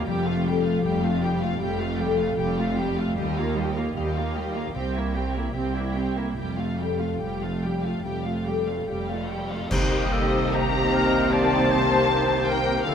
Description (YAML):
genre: cinematic, emotional film score for orchestra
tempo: 71-78 BPM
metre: 4/4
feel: rubato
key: C dorian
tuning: A4 = 440 Hz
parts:
  - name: muted studio violin section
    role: melody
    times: 0.0-12.9 s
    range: Eb5 to Bb5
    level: -31 LUFS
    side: left 5 dB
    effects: none
  - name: muted studio violin section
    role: second line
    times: 0.0-12.9 s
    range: E4 to C5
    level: -31 LUFS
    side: left 2 dB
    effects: none
  - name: muted studio viola section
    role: accompaniment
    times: 0.0-12.9 s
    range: Eb3 to C4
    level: -30 LUFS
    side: right 2 dB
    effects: none
  - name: concert harp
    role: arpeggios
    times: 0.0-12.9 s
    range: C3 to A5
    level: -31 LUFS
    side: left 8 dB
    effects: none
  - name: muted studio cello section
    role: bass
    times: 0.1-12.9 s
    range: C2 to D3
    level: -30 LUFS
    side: right 3 dB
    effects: none
  - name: muted studio double bass section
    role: bass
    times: 0.1-12.9 s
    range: F1 to Eb2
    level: -30 LUFS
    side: right 2 dB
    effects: none
  - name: cymbal swell, clash cymbals and concert bass drum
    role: percussion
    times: 6.4-11.3 s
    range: none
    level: -32 LUFS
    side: equal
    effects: none
  - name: bright clarinet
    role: second line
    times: 9.7-12.9 s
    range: G4 to D5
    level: -30 LUFS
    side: left 1 dB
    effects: none
  - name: large flute ensemble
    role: second line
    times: 9.7-12.9 s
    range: G4 to Eb5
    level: -29 LUFS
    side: equal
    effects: none
  - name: mellow French horn section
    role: sustained chords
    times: 9.7-12.9 s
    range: A3 to G4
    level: -29 LUFS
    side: left 4 dB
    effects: none
  - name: timpani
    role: percussion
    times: 9.7-10.9 s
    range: C3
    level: -32 LUFS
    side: equal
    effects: none
room: wet scoring stage reverb, RT60 1.8 s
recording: none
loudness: -22 LUFS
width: side -8 dB against mid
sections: 0.0-9.7 A section; 9.7-12.9 B section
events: band accent 9.7-10.5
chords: 0.1 Fadd9; 3.2 Ebadd9; 4.7 C7; 6.4 Fadd9; 9.7 Cm7